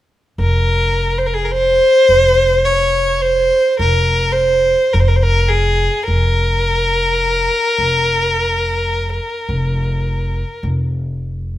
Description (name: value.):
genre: Arabic maqam ensemble.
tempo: 106 BPM (eighths).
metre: 10/8.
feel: straight.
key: F maqam bayati.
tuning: A4 = 439 Hz.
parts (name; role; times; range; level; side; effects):
rich violin; melody; 0.4-10.6 s; Ab4 to Db5; -14 LUFS; equal; none.
upright bass; bass; 0.4-11.6 s; F1; -18 LUFS; equal; none.
room: light reverb.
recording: close, detailed microphones.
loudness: -13 LUFS.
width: side -13 dB against mid.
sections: 0.4-11.6 A section.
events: none.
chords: none.